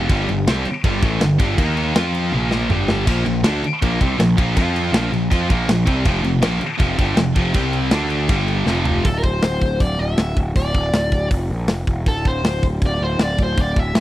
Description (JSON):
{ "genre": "heavy metal", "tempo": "160 BPM", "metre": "4/4", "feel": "straight", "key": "unclear", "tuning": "A4 = 440 Hz", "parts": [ { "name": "scooped high-gain guitar", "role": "riff", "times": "0.0-9.0 s", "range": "F2 to F4", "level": "-20 LUFS", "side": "equal", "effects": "distortion" }, { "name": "fuzz picked electric bass", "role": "bass", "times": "0.0-14.0 s", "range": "D1 to F2", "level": "-21 LUFS", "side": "equal", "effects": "overdrive" }, { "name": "tight metal drum kit", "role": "drums", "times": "0.1-14.0 s", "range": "crash cymbal, hi-hat, kick drum, snare drum, toms", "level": "-19 LUFS", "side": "equal", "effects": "none" }, { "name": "high-gain lead guitar", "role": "melody", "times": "9.1-14.0 s", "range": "A4 to F5", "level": "-23 LUFS", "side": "left 1 dB", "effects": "distortion, slapback echo" } ], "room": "small room ambience", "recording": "dry, close 1970s-style studio recording", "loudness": "-16 LUFS", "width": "side -14 dB against mid", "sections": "0.0-9.0 A section; 9.0-14.0 B section", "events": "drum fill 2.3-3.1, 8.7-9.0", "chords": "0.1 G5; 1.6 Eb5; 2.0 F5; 2.3 Bb5; 2.7 G5; 3.1 Bb5; 4.6 F5; 4.9 Bb5; 6.1 F5; 7.5 C5; 7.9 D5; 8.3 G5; 8.7 F5; 9.0 Bbadd9/D (rootless); 11.3 Fsus4; 11.7 N.C." }